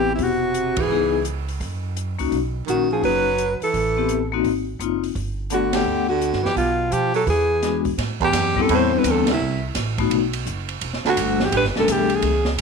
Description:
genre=jazz, small-group swing and bop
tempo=170 BPM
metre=4/4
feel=swing 64% on 8ths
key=unclear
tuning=A4 = 440 Hz
part: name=clear alto saxophone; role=melody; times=0.0-12.5 s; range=E4 to C5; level=-22 LUFS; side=left 1 dB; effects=slapback echo
part: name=mellow baritone saxophone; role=second line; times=0.0-12.5 s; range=C2 to F#3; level=-25 LUFS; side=right 14 dB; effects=none
part: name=vibraphone with medium hard mallets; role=accompaniment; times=0.0-12.2 s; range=G3 to F#5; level=-23 LUFS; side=left 13 dB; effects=none
part: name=upright bass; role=bass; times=0.0-12.6 s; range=E1 to B2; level=-27 LUFS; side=right 2 dB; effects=none
part: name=open jazz drum kit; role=drums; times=0.2-12.6 s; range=hi-hat, kick drum, ride cymbal, snare drum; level=-28 LUFS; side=right 3 dB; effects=none
room=light reverb, small room reverb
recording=1960s-style stereo with parts hard left and right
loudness=-19 LUFS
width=side -5 dB against mid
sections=0.0-8.0 A section; 8.0-12.6 B section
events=band accent 0.7, 5.7, 9.2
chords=0.0 Am7; 0.9 C#m9; 1.6 F#; 2.3 Bmaj7; 3.7 Am7; 4.4 Ab9; 5.2 Gmaj9; 6.6 G7/B; 7.3 E7; 8.0 Am7; 9.4 F#dim; 10.1 B5; 10.8 Em11

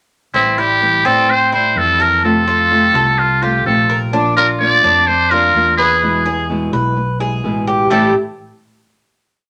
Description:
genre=latin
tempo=127 BPM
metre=4/4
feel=straight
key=unclear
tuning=A4 = 439 Hz
part: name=trumpet with metal mute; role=melody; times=0.3-8.1 s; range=E4 to D5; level=-15 LUFS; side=equal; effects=none
part: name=flamenco guitar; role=accompaniment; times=0.3-8.1 s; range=A2 to F4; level=-23 LUFS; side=equal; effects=none
part: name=Cuban tres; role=arpeggios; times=0.3-8.1 s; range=A3 to B4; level=-21 LUFS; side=equal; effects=none
part: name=mellow fretless electric bass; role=bass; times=0.3-8.1 s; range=A1 to A2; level=-24 LUFS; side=equal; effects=none
room=moderate club reverb, RT60 0.8 s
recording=none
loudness=-14 LUFS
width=mono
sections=0.3-7.9 verse; 7.9-9.5 final chord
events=none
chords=0.3 Am7; 2.2 F; 4.1 Bb; 6.0 E; 7.9 A7(no3)

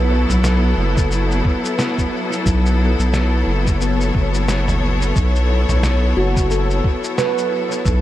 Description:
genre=ambient dub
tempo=89 BPM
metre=4/4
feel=swing 58% on 16ths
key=unclear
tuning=A4 = 440 Hz
part: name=clear studio string section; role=sustained chords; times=0.0-8.0 s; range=F#3 to C#5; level=-20 LUFS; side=left 2 dB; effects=none
part: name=handpan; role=arpeggios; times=0.0-8.0 s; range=B3 to B4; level=-25 LUFS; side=right 2 dB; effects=dub echo
part: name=round analog bass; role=bass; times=0.0-8.0 s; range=F#1 to B1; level=-17 LUFS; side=equal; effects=none
part: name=lo-fi sampler-style drum kit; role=drums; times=0.3-8.0 s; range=cabasa, snare drum, toms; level=-26 LUFS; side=equal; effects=small room reverb, dub echo
part: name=electronic kick drum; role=drums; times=1.0-8.0 s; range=none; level=-19 LUFS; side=equal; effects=small room reverb
room=light reverb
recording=none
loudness=-15 LUFS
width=side -14 dB against mid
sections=0.0-8.0 A section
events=none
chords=0.0 F#m7

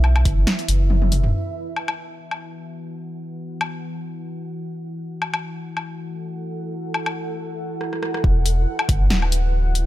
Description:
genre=deep dubstep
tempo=139 BPM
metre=4/4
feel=swing 55% on 16ths, half-time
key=unclear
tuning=A4 = 442 Hz
part: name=deep dark ambient pad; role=sustained chords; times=0.0-9.9 s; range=E4 to F#5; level=-30 LUFS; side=equal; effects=chorus, built-in reverb
part: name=saturated sub bass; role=bass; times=0.0-1.3, 8.2-9.9 s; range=D1 to B1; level=-18 LUFS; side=equal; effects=none
part: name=deep house drum kit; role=drums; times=0.0-9.8 s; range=hi-hat, rim click, snare drum, toms, woodblock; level=-24 LUFS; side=left 1 dB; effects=overdrive
part: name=electronic kick drum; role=drums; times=0.3, 8.2-9.0 s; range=none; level=-19 LUFS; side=equal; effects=overdrive
room=little or no reverb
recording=none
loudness=-21 LUFS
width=side -15 dB against mid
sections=0.0-1.3 A section; 1.3-8.2 B section; 8.2-9.9 C section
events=break 0.5-1.3; drum fill 0.9-1.3, 7.8-8.2; drop 8.2-9.9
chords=0.0 Emadd9; 1.3 Esus2; 8.2 Emadd9

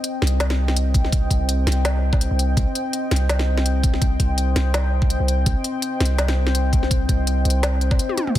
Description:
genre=half-time drum and bass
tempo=166 BPM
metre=4/4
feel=swing 55% on 16ths, half-time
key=C minor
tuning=A4 = 440 Hz
part: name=deep dark ambient pad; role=sustained chords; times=0.0-8.4 s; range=C4 to G5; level=-26 LUFS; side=left 2 dB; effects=chorus, built-in reverb, sidechain pumping
part: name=organic electronic drum kit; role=drums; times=0.0-8.4 s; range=hi-hat, snare drum, toms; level=-25 LUFS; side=left 1 dB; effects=overdrive, studio reverb
part: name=long sustained 808-style bass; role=bass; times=0.2-8.4 s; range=C2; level=-20 LUFS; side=equal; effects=none
part: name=electronic kick drum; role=drums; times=0.9-8.4 s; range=none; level=-20 LUFS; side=equal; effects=studio reverb
room=little or no reverb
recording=dense, heavily limited modern master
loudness=-18 LUFS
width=side -13 dB against mid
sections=0.0-8.4 A section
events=break 8.0-8.4; drum fill 8.1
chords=0.0 Cm

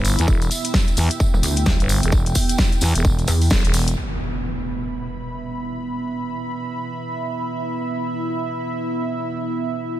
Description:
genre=bass house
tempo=130 BPM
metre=4/4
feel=swing 60% on 16ths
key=E minor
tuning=A4 = 439 Hz
part: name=dark analog pad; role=sustained chords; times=0.0-10.0 s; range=B3 to B5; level=-26 LUFS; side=right 2 dB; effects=chorus, sidechain pumping
part: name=growling FM bass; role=bass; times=0.0-4.0 s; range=E1 to E2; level=-19 LUFS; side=equal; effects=tube saturation, sidechain pumping
part: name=big-room dance drum kit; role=drums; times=0.0-4.0 s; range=hi-hat, snare drum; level=-25 LUFS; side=left 1 dB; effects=low-pass filter on hats, studio reverb, low-pass filter on snare
part: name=tambourine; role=percussion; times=0.1-4.0 s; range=none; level=-29 LUFS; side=right 2 dB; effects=none
part: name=electronic kick drum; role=drums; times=0.3-3.6 s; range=none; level=-19 LUFS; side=equal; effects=studio reverb
part: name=pulsing pluck wobble bass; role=bass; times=1.3-3.5 s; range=E1 to E2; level=-18 LUFS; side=equal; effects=chorus, sidechain pumping
part: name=impact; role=sound effects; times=4.0-5.8 s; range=none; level=-30 LUFS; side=equal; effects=none
room=digital ambience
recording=none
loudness=-19 LUFS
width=side -13 dB against mid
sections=0.0-4.0 A section; 4.0-10.0 B section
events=drop 0.0-4.0; band accent 3.5; impact 4.0-5.8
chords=0.0 E5

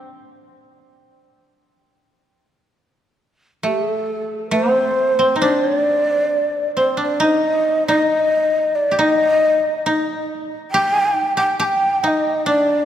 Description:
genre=japanese traditional, Japanese chamber music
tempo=68 BPM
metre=2/4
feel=rubato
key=D in sen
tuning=A4 = 439 Hz
part: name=koto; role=second line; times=0.0-12.8 s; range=A3 to G4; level=-20 LUFS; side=equal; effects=none
part: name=breathy mellow shakuhachi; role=melody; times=3.6-12.8 s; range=A4 to A5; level=-17 LUFS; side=equal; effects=none
room=moderate church reverb, RT60 3.5 s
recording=none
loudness=-15 LUFS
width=side -10 dB against mid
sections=0.0-7.2 A section; 7.2-12.8 B section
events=none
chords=none

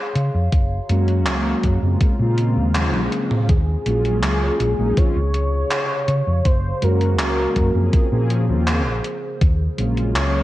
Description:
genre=vaporwave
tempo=81 BPM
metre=4/4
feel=straight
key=unclear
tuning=A4 = 440 Hz
part: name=warbly tape-like pad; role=sustained chords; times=0.0-10.4 s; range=C3 to C6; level=-29 LUFS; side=left 2 dB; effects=chorus, built-in reverb, vintage 12-bit sampler grit
part: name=hollow-body short-scale fingered electric bass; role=bass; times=0.2-10.4 s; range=Gb1 to Db3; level=-20 LUFS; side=equal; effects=none
part: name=gated 80s digital drum machine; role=drums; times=0.2-10.3 s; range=handclaps, hi-hat, toms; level=-24 LUFS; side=equal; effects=gated reverb, overdrive
part: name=electronic kick drum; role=drums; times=0.5-9.6 s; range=none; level=-18 LUFS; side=equal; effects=overdrive
part: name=mellow synth brass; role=accompaniment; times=0.9-10.4 s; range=Db3 to Ab4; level=-24 LUFS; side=equal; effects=analog chorus, cassette tape, tape echo
part: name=warm velvety synth lead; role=melody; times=3.5-10.4 s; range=Ab4 to Db5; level=-25 LUFS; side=equal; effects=chorus, cassette tape, tape echo
room=light reverb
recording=cassette tape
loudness=-17 LUFS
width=side -15 dB against mid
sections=0.0-3.5 A section; 3.5-10.4 B section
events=drum fill 2.8-3.5; band accent 2.8-3.1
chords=0.0 Dbmaj7; 0.5 Gbmaj7; 2.0 Bbm9; 3.5 Ebm11; 5.0 Dbmaj7; 6.5 Gbmaj7; 7.9 Bbm9; 9.4 Ebm11

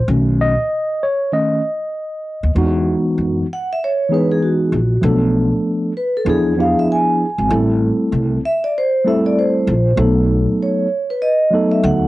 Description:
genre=hip hop, jazz-hop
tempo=97 BPM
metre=4/4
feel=swing 60% on 16ths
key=E major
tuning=A4 = 440 Hz
part: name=mellow tine electric piano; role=accompaniment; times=0.0-12.1 s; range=D#3 to D#5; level=-16 LUFS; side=equal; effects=medium stereo tremolo, cassette tape
part: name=upright bass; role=bass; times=0.1-12.1 s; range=G#1 to F#2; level=-17 LUFS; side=equal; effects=none
part: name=vibraphone with soft mallets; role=melody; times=3.5-12.1 s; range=F#4 to G#5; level=-18 LUFS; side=right 1 dB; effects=none
room=light reverb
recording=home recording on cassette, nothing above 10.4 kHz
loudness=-14 LUFS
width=side -18 dB against mid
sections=0.0-2.6 A section; 2.6-12.1 A section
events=tine electric piano solo 0.0-2.6; vibraphone solo 2.6-12.1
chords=0.1 B7; 2.6 Emaj9; 5.0 Bm7b5; 6.3 E7b9; 7.5 Am7; 10.0 B7

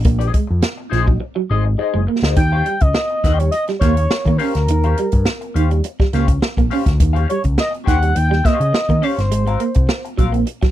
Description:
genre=funk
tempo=104 BPM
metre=4/4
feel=straight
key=Eb mixolydian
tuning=A4 = 440 Hz
part: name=clean electric guitar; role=accompaniment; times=0.0-10.7 s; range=C4 to G5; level=-25 LUFS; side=left 9 dB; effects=wah, harmonic tremolo
part: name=picked electric bass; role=bass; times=0.0-10.4 s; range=Gb1 to Eb3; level=-17 LUFS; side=equal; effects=none
part: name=swinging big-band drum kit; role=drums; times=0.0-10.7 s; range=hi-hat, kick drum, snare drum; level=-18 LUFS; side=equal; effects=none
part: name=electric guitar through a small old amp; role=riff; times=0.1-10.7 s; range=Eb3 to Db4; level=-22 LUFS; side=right 6 dB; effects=tremolo
part: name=expressive synth lead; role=melody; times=2.4-10.1 s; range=Bb4 to G5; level=-21 LUFS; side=left 1 dB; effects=chorus
room=little or no reverb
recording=dry, close 1970s-style studio recording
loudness=-14 LUFS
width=side -13 dB against mid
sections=0.0-2.4 A section; 2.4-10.7 B section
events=drum fill 1.2-2.4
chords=0.0 Bb9sus4; 2.4 Eb13; 9.3 Ab13

